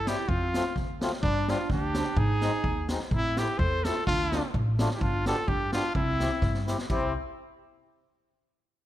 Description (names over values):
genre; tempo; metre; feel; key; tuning
alpine folk, alpine dance band; 127 BPM; 2/4; swing 53% on 8ths; C major; A4 = 442 Hz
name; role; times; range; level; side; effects
clear trumpet; melody; 0.0-7.1 s; C4 to C5; -30 LUFS; left 1 dB; none
mellow clarinet; second line; 0.0-7.1 s; G3 to A4; -36 LUFS; right 5 dB; none
upright bass; bass; 0.0-7.1 s; G1 to A2; -30 LUFS; equal; none
mellow accordion; accompaniment; 0.1-7.1 s; G3 to G4; -34 LUFS; left 2 dB; none
street-band drum kit; drums; 0.1-7.0 s; crash cymbal, hi-hat, kick drum, snare drum; -31 LUFS; equal; none
room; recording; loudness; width
light reverb; none; -25 LUFS; side -13 dB against mid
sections
0.0-6.9 A section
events
drum fill 6.4-6.9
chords
0.3 F; 1.2 Gsus4; 2.2 Ab; 3.1 Am; 4.1 Dm; 5.0 G; 5.9 C